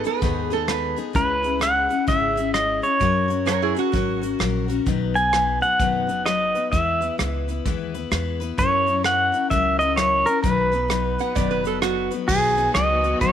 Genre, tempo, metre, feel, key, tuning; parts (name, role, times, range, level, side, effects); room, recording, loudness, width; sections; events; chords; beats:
honky-tonk and classic country; 129 BPM; 4/4; swing 62% on 8ths; B major; A4 = 440 Hz
lap resonator guitar; second line; 0.0-5.0, 11.2-12.1 s; E4 to F#5; -26 LUFS; right 12 dB
picked steel-string acoustic guitar; accompaniment; 0.0-13.3 s; G#2 to B4; -26 LUFS; left 10 dB
soft brush drum kit; drums; 0.0-13.3 s; crash cymbal, hi-hat, kick drum, rim click; -27 LUFS; right 1 dB
upright bass; bass; 0.2-13.3 s; F#1 to F#2; -28 LUFS; right 1 dB
pedal steel guitar; melody; 1.2-13.3 s; G#4 to G#5; -20 LUFS; right 1 dB
rich studio string section; sustained chords; 12.3-13.3 s; D#3 to F#4; -29 LUFS; right 2 dB
light reverb, small room ambience; 1960s-style stereo with parts hard left and right; -19 LUFS; side -9 dB against mid
0.0-12.3 A section; 12.3-13.3 A section
0.0 G#m; 1.1 C#m; 3.0 F#; 4.9 B; 6.7 E; 8.6 F#7; 10.4 B
0.22 0.68 | 1.15 1.61 2.08 2.54 | 3.00 3.47 3.93 4.40 | 4.86 5.33 5.79 6.25 | 6.72 7.18 7.65 8.11 | 8.58 9.04 9.51 9.97 | 10.43 10.90 11.36 11.83 | 12.29 12.75 13.22